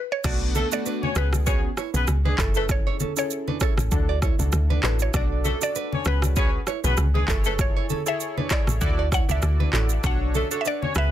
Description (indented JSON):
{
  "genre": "afrobeats",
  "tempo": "98 BPM",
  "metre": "4/4",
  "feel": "swing 55% on 16ths",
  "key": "F# minor",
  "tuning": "A4 = 440 Hz",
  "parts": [
    { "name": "mallet-like synth pluck", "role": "melody", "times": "0.0-11.1 s", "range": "A4 to F#5", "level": "-30 LUFS", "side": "equal", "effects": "chorus, ping-pong delay" },
    { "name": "warm analog keys", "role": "accompaniment", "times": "0.2-11.1 s", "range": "A3 to D5", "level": "-31 LUFS", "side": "left 1 dB", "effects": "chorus" },
    { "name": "deep log drum bass", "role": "bass", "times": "0.2-11.1 s", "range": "F#1 to D2", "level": "-23 LUFS", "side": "equal", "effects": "none" },
    { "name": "afro-pop drum kit", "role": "drums", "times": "0.2-11.1 s", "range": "crash cymbal, handclaps, kick drum, rim click, shaker", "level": "-25 LUFS", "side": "equal", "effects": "none" },
    { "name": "congas", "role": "percussion", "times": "0.2-10.9 s", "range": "none", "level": "-32 LUFS", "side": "left 3 dB", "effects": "none" },
    { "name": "nylon-string guitar", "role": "riff", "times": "0.3-10.9 s", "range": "A3 to D5", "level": "-32 LUFS", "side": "right 12 dB", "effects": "ping-pong delay" },
    { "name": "dark horn section", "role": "second line", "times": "0.5-11.1 s", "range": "G#3 to C#5", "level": "-28 LUFS", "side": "left 4 dB", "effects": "none" }
  ],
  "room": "little or no reverb",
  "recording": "dense, heavily limited modern master",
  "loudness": "-21 LUFS",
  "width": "side -12 dB against mid",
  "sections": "0.2-11.1 A section",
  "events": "break 0.0",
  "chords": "0.2 Bm7; 1.2 C#7sus4; 2.4 F#m7; 3.9 Dadd9; 5.1 Bm7; 6.1 C#7sus4; 7.3 F#m7; 8.8 Dadd9; 10.0 Bm7"
}